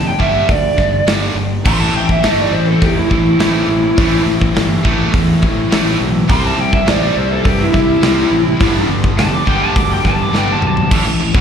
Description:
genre	hard rock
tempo	104 BPM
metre	4/4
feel	straight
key	unclear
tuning	A4 = 441 Hz
part	lead guitar through a small cranked amp	melody	0.0-10.9 s	E4 to D6	-17 LUFS	right 1 dB	overdrive, slapback echo, tape echo
part	distorted electric guitar	riff	0.0-11.4 s	G2 to C4	-22 LUFS	right 9 dB	overdrive, slapback echo
part	high-gain distorted guitar	riff	0.0-11.4 s	G2 to C4	-22 LUFS	left 10 dB	distortion
part	fuzz fingered electric bass	bass	0.0-11.4 s	F1 to G2	-19 LUFS	equal	overdrive
part	big rock drum kit	drums	0.2-11.4 s	crash cymbal, hi-hat, kick drum, snare drum, toms	-17 LUFS	equal	none
part	overdriven electric guitar	riff	1.7-11.4 s	G2 to E4	-21 LUFS	left 2 dB	slapback echo
room	studio reverb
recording	live gig heard through the venue's PA, club reverb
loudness	-11 LUFS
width	side -7 dB against mid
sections	0.0-10.9 A section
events	lead electric guitar solo 0.0-10.9; drum fill 10.3-10.9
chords	0.0 G5; 1.7 Am; 6.3 C; 8.6 G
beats	0.49 1.08 | 1.66 2.24 2.82 3.40 | 3.98 4.56 5.14 5.72 | 6.30 6.88 7.45 8.03 | 8.61 9.19 9.76 10.34 | 10.91

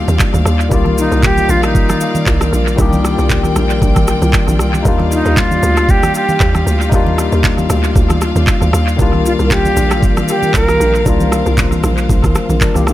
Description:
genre	amapiano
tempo	116 BPM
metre	4/4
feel	swing 55% on 16ths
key	unclear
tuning	A4 = 440 Hz
part	barky tine electric piano	accompaniment	0.0-12.9 s	Eb3 to D5	-18 LUFS	left 5 dB	none
part	warm chamber string section	sustained chords	0.0-12.9 s	F4 to G5	-22 LUFS	equal	none
part	hollow log drum bass	bass	0.0-12.9 s	Bb1 to Eb2	-16 LUFS	equal	none
part	smooth R&B drum kit	drums	0.1-12.9 s	handclaps, kick drum, rim click, shaker	-16 LUFS	right 1 dB	analog delay
part	congas	percussion	0.1-12.9 s	none	-21 LUFS	right 2 dB	none
part	concert flute	melody	1.0-11.0 s	Eb4 to Bb4	-17 LUFS	right 1 dB	analog delay
room	studio reverb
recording	echo-heavy mix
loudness	-10 LUFS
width	side -14 dB against mid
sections	0.0-12.9 A section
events	none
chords	0.0 Ebmaj9; 0.7 Cm11; 4.9 Ebmaj9; 9.0 Cm11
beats	0.20 | 0.72 1.23 1.75 2.27 | 2.79 3.30 3.82 4.34 | 4.85 5.37 5.89 6.41 | 6.92 7.44 7.96 8.47 | 8.99 9.51 10.03 10.54 | 11.06 11.58 12.10 12.61

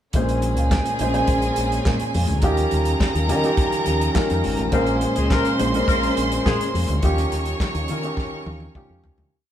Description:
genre	disco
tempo	104 BPM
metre	4/4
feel	straight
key	Bb dorian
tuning	A4 = 437 Hz
part	clear studio violin section	second line	0.1-9.3 s	Ab4 to Db6	-26 LUFS	right 2 dB	none
part	dark baby grand piano	accompaniment	0.1-9.3 s	Bb2 to C5	-24 LUFS	equal	none
part	dark studio string section	sustained chords	0.1-9.3 s	Db3 to Eb4	-29 LUFS	right 1 dB	none
part	fingered electric bass with an envelope filter	bass	0.1-9.3 s	Ab1 to Eb3	-24 LUFS	equal	none
part	warm soul drum kit	drums	0.1-9.3 s	handclaps, hi-hat, kick drum, snare drum, toms	-24 LUFS	equal	none
part	congas	percussion	0.1-9.3 s	none	-34 LUFS	left 3 dB	none
part	dark horn section	stabs	4.7-6.7 s	Ab3 to Bb4	-25 LUFS	left 3 dB	none
room	wet studio reverb, RT60 0.6 s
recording	band playing live in one room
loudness	-18 LUFS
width	side -10 dB against mid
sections	0.1-9.3 groove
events	fade-out 7.0-9.3; drum fill 8.2-9.3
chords	0.1 Bbm9; 2.4 Eb9; 4.7 Bbm9; 7.0 Eb9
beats	| 0.14 0.71 1.28 1.86 | 2.43 3.00 3.58 4.15 | 4.73 5.30 5.88 6.45 | 7.03 7.60 8.17 8.74

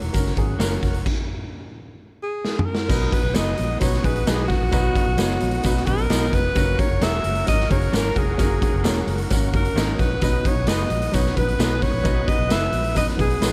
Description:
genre	uptempo 1960s-style soul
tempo	131 BPM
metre	4/4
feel	straight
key	B major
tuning	A4 = 439 Hz
part	tonewheel organ	sustained chords	0.0-13.5 s	B3 to D#6	-38 LUFS	equal	none
part	vintage muted fingered electric bass	bass	0.0-13.5 s	E1 to B1	-27 LUFS	equal	none
part	raw garage drum kit	drums	0.0-13.5 s	crash cymbal, hi-hat, kick drum, snare drum, toms	-25 LUFS	equal	none
part	warm grand piano	accompaniment	0.1-13.5 s	F#3 to C#5	-30 LUFS	equal	none
part	tambourine	percussion	0.2-13.5 s	none	-38 LUFS	equal	none
part	electric guitar through a small old amp	stabs	0.6-13.5 s	A#3 to B4	-35 LUFS	equal	tape echo
part	breathy alto saxophone	melody	2.2-13.5 s	F#4 to E5	-28 LUFS	equal	none
part	warm horn section	second line	3.8-13.5 s	D#3 to B4	-38 LUFS	equal	none
room	studio ambience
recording	none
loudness	-21 LUFS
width	mono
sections	0.0-2.9 A section; 2.9-13.5 B section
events	stop 1.1-2.9; drum fill 2.4-2.9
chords	0.0 F#; 2.9 B; 6.6 F#; 10.2 B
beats	0.14 0.60 | 1.06 1.52 1.98 2.44 | 2.90 3.36 3.81 4.27 | 4.73 5.19 5.65 6.11 | 6.56 7.02 7.48 7.94 | 8.39 8.85 9.31 9.77 | 10.22 10.68 11.14 11.59 | 12.05 12.51 12.96 13.42

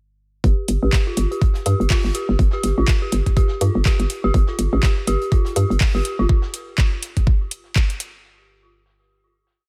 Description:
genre	minimal techno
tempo	123 BPM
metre	4/4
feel	swing 58% on 16ths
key	unclear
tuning	A4 = 440 Hz
part	dark detuned synth bell	riff	0.4-6.2 s	F4 to G4	-29 LUFS	equal	chorus, sidechain pumping, low-pass filter, tape echo
part	hollow knocking FM bass	bass	0.4-6.3 s	G1 to G2	-21 LUFS	equal	sidechain pumping
part	electronic kick drum	drums	0.4-7.9 s	none	-20 LUFS	equal	overdrive
part	natural country drum kit	drums	0.4-6.2 s	hi-hat, snare drum	-42 LUFS	equal	sidechain pumping on hats, high-pass filter on hats, high-pass filter on snare, high-pass filter on room, tape echo
part	garage drum kit	drums	0.7-8.1 s	handclaps, hi-hat	-29 LUFS	equal	overdrive
room	small room ambience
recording	echo-heavy mix, faint mains hum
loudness	-19 LUFS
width	mono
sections	0.4-8.2 groove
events	filter sweep on synth bell 0.4-6.3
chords	none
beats	| 0.44 0.93 1.42 1.90 | 2.39 2.88 3.37 3.85 | 4.34 4.83 5.32 5.81 | 6.29 6.78 7.27 7.76

